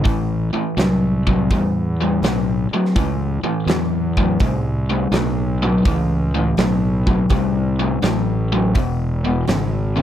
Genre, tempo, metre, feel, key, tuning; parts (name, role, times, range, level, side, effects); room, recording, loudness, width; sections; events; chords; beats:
blues rock power trio and southern rock; 83 BPM; 4/4; swing 68% on 8ths; A4 = 440 Hz
raw garage guitar; riff; 0.0-10.0 s; E2 to G3; -19 LUFS; left 1 dB; overdrive
fuzz fingered electric bass; bass; 0.0-10.0 s; E1 to E2; -21 LUFS; equal; overdrive
huge arena drum kit; drums; 0.1-9.7 s; hi-hat, kick drum, snare drum; -22 LUFS; right 1 dB
little or no reverb; dry, close 1970s-style studio recording; -16 LUFS; side -11 dB against mid
0.0-10.0 A section
0.1 A7#9; 8.8 E
| 0.06 0.79 1.51 2.23 | 2.96 3.68 4.41 5.13 | 5.86 6.58 7.31 8.03 | 8.76 9.48